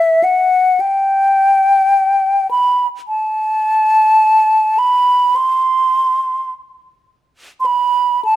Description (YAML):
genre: classical, free, expressive piece for unaccompanied flute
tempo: 52 BPM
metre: 4/4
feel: rubato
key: E minor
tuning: A4 = 437 Hz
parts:
  - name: mellow hollow silver concert flute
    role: solo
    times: 0.0-8.4 s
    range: E5 to C6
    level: -11 LUFS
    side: equal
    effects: none
room: moderate stone room reverb, RT60 1.2 s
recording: none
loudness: -11 LUFS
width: side -13 dB against mid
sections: 0.0-8.4 A section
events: none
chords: none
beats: 0.82 1.95 | 3.07 4.20 5.37 6.52 | 7.67